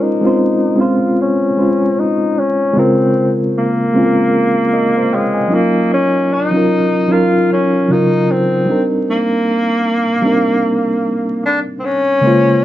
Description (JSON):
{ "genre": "hip hop", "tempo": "76 BPM", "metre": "4/4", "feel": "swing 56% on 16ths", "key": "unclear", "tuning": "A4 = 436 Hz", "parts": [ { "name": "breathy tenor saxophone", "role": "melody", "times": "0.0-12.6 s", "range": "Ab3 to F4", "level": "-16 LUFS", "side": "left 1 dB", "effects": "low-pass filter, analog delay" }, { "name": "mellow reed electric piano", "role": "accompaniment", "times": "0.0-12.6 s", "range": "Db3 to Ab5", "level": "-14 LUFS", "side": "equal", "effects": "fast tremolo" } ], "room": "wet small room reverb, RT60 0.5 s", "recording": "dark, warm production, vinyl crackle, nothing above 7.8 kHz", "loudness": "-12 LUFS", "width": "side -13 dB against mid", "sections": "0.0-12.2 A section", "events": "filter sweep 0.0-12.2", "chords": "0.0 Bbm9; 5.5 Ebm9; 8.7 Cm9" }